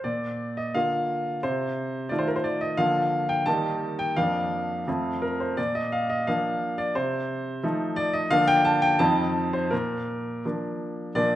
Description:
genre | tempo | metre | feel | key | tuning
classical-period piano sonatina | 87 BPM | 2/4 | rubato | Bb major | A4 = 444 Hz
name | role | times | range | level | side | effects
clear baby grand piano | solo | 0.0-11.4 s | F2 to A5 | -23 LUFS | equal | none
room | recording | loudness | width
moderate recital hall reverb, RT60 1.5 s | none | -23 LUFS | side -13 dB against mid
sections
0.1-11.2 A section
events
none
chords
0.1 Bb; 1.4 F7/C; 2.8 Bb/D; 3.5 Eb; 4.2 Bb/F; 4.9 F; 5.6 Bb; 7.0 F7/C; 8.3 Bb/D; 9.0 F7; 9.7 Bb

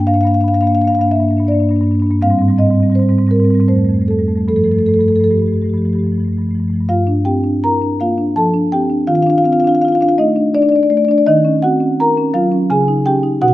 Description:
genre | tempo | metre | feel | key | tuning
classical, contemporary piece for solo marimba | 73-86 BPM | 3/4 | rubato | unclear | A4 = 440 Hz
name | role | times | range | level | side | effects
marimba with soft mallets | solo | 0.0-13.5 s | F2 to Bb5 | -12 LUFS | equal | none
room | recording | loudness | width
moderate recital hall reverb, RT60 1.4 s | close, detailed microphones | -12 LUFS | side -15 dB against mid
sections
0.0-6.9 A section; 6.9-13.5 B section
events
none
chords
0.0 Gm6; 2.2 Abmaj7; 3.7 Fadd9; 4.5 Gsus2; 6.9 Gm7; 8.4 F69; 9.1 Cm69/Eb (rootless); 11.3 Ebm7; 12.7 C#sus2

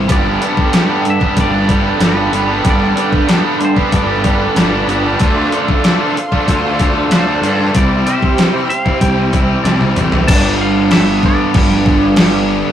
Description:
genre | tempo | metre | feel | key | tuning
rock, shoegaze and dream pop | 94 BPM | 4/4 | straight | G mixolydian | A4 = 441 Hz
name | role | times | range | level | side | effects
twangy electric guitar | melody | 0.0-12.5 s | B4 to A5 | -23 LUFS | left 1 dB | none
chorused pulse-width pad | sustained chords | 0.0-10.3 s | G4 to C6 | -22 LUFS | right 3 dB | none
biting overdriven guitar | riff | 0.0-12.7 s | G2 to E4 | -18 LUFS | left 4 dB | none
biting overdriven guitar | riff | 0.0-12.7 s | G2 to G4 | -17 LUFS | right 4 dB | none
fuzz picked electric bass | bass | 0.0-12.6 s | G1 to G2 | -18 LUFS | equal | overdrive
detuned 8-bit digital drum machine | drums | 0.1-12.3 s | crash cymbal, hi-hat, kick drum, snare drum, toms | -14 LUFS | equal | none
room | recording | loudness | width
wet studio reverb, RT60 0.5 s | rough rehearsal-room recording, warm saturation | -11 LUFS | side -10 dB against mid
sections
0.1-10.3 A section; 10.3-12.7 B section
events
drum fill 9.7-10.3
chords
0.1 Gadd9; 5.2 Dm7; 7.7 C; 10.3 G

